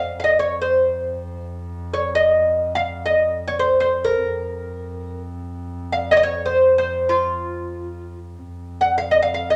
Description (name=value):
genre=Arabic maqam ensemble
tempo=free time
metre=none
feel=none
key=F maqam hijaz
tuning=A4 = 439 Hz
part: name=oud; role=melody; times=0.0-9.6 s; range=F4 to Gb5+25c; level=-20 LUFS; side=equal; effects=none
part: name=warm double bass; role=drone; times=0.0-9.6 s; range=F2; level=-35 LUFS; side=equal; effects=none
room=wet studio reverb, RT60 0.6 s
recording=none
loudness=-20 LUFS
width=mono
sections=0.0-8.5 A section; 8.5-9.6 A section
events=none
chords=none